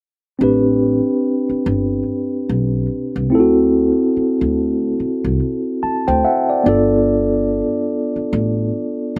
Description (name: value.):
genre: R&B, neo-soul.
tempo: 72 BPM.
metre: 4/4.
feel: swing 60% on 16ths.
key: A minor.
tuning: A4 = 440 Hz.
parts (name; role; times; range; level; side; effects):
mellow tine electric piano; accompaniment; 0.4-9.2 s; B3 to A5; -18 LUFS; equal; slapback echo.
upright bass; bass; 0.4-9.2 s; G1 to D2; -24 LUFS; equal; none.
room: little or no reverb.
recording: recorded outdoors, with no room sound.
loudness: -17 LUFS.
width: mono.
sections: 0.4-9.2 A section.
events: tine electric piano fill 5.4-7.1.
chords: 0.4 Am11; 3.3 D7; 6.6 G9.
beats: | 0.39 1.23 2.06 2.89 | 3.73 4.56 5.39 6.23 | 7.06 7.89 8.73.